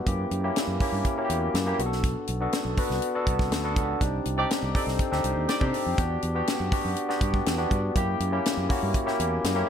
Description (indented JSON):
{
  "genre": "polished 1980s jazz-funk pop",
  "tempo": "122 BPM",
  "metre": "4/4",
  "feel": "straight",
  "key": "unclear",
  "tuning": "A4 = 440 Hz",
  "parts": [
    { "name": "barky tine electric piano", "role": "accompaniment", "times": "0.0-9.7 s", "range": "A#3 to B4", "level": "-27 LUFS", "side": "left 1 dB", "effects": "overdrive, wide subtle chorus" },
    { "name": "fretless electric bass", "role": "bass", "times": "0.1-9.6 s", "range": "B1 to C3", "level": "-30 LUFS", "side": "right 1 dB", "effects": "none" },
    { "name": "tight funk drum kit", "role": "drums", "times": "0.1-9.6 s", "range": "hi-hat, kick drum, snare drum", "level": "-28 LUFS", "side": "equal", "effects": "gated reverb" },
    { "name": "mellow horn section", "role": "second line", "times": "4.4-5.6 s", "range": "Eb4 to D5", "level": "-32 LUFS", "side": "right 2 dB", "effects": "ping-pong delay" }
  ],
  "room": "light reverb",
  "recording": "none",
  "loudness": "-24 LUFS",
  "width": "side -8 dB against mid",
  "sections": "0.0-9.7 A section",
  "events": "band accent 4.0-6.0",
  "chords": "0.1 F#7b9; 1.8 Bm7; 4.0 Cmadd9; 6.0 Em9; 8.0 F#7b9",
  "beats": "| 0.06 0.56 1.05 1.54 | 2.04 2.53 3.02 3.52 | 4.01 4.50 5.00 5.49 | 5.99 6.48 6.97 7.47 | 7.96 8.45 8.95 9.44"
}